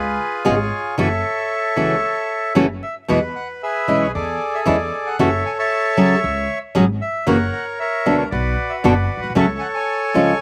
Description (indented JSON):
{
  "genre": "tango",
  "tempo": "115 BPM",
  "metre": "4/4",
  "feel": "rubato",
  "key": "F# minor",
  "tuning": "A4 = 440 Hz",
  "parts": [
    { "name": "bandoneon", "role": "melody", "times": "0.0-10.4 s", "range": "E#4 to A5", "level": "-23 LUFS", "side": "equal", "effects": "slapback echo" },
    { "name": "upright bass", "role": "bass", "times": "0.0-10.4 s", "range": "F#1 to E2", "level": "-27 LUFS", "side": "equal", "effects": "none" },
    { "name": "nylon-string guitar", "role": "accompaniment", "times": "0.4-10.3 s", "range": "B2 to G#4", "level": "-19 LUFS", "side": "equal", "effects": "none" }
  ],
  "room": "little or no reverb",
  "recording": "recorded outdoors, with no room sound, vinyl crackle",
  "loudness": "-19 LUFS",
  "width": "mono",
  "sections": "0.0-10.4 A section",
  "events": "none",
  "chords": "0.0 C#7; 1.0 F#m7; 3.1 Eadd9; 4.1 Amaj7(no3)/E; 5.2 F#m7; 6.2 C#sus4; 7.3 F#7; 8.3 Bm; 9.4 F#m/C#"
}